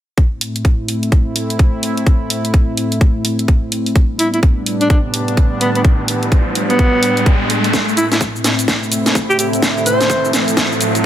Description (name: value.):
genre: bass house.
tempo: 127 BPM.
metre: 4/4.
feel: swing 61% on 16ths.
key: A minor.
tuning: A4 = 440 Hz.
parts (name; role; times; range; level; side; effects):
sweeping resonant pad; sustained chords; 0.2-11.1 s; A2 to E4; -20 LUFS; equal; chorus, sidechain pumping.
electronic kick drum; drums; 0.2-10.7 s; none; -12 LUFS; equal; high-pass filter on kick.
garage drum kit; drums; 0.2-11.0 s; cabasa, hi-hat, snare drum; -18 LUFS; equal; high-pass filter on hats, high-pass filter on snare, high-pass filter on perc.
riser; sound effects; 5.1-11.1 s; none; -22 LUFS; equal; none.
warm alto saxophone; melody; 4.2-10.3 s; B3 to C5; -18 LUFS; equal; dub echo.
deep dark ambient pad; texture; 8.9-11.1 s; C4 to A5; -21 LUFS; right 3 dB; chorus, built-in reverb, sidechain pumping.
room: light reverb, digital ambience.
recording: none.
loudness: -13 LUFS.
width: side -11 dB against mid.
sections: 0.2-7.7 A section; 7.7-11.1 B section.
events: riser 5.1-7.7, 7.7-11.1; build-up 7.7-11.1; drum fill 7.7-11.1.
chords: 0.2 Am; 4.0 Gadd9/A; 7.7 Am.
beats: | 0.18 0.65 1.12 1.59 | 2.07 2.54 3.01 3.48 | 3.96 4.43 4.90 5.37 | 5.84 6.32 6.79 7.26 | 7.74 8.21 8.68 9.15 | 9.62 10.10 10.57 11.04.